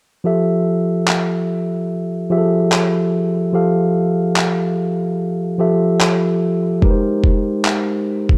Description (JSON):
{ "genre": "contemporary R&B", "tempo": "73 BPM", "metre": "4/4", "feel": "swing 58% on 16ths", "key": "F major", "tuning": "A4 = 440 Hz", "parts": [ { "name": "mellow tine electric piano", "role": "accompaniment", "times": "0.2-8.4 s", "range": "F3 to F5", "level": "-18 LUFS", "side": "equal", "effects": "none" }, { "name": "dusty soul sampler-style drum kit", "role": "drums", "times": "1.1-8.4 s", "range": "handclaps, kick drum", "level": "-19 LUFS", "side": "equal", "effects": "overdrive" } ], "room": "light reverb", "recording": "dark, warm production", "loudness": "-18 LUFS", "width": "mono", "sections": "0.2-8.4 A section", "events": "none", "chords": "0.2 Fmaj9; 6.8 Abmaj9" }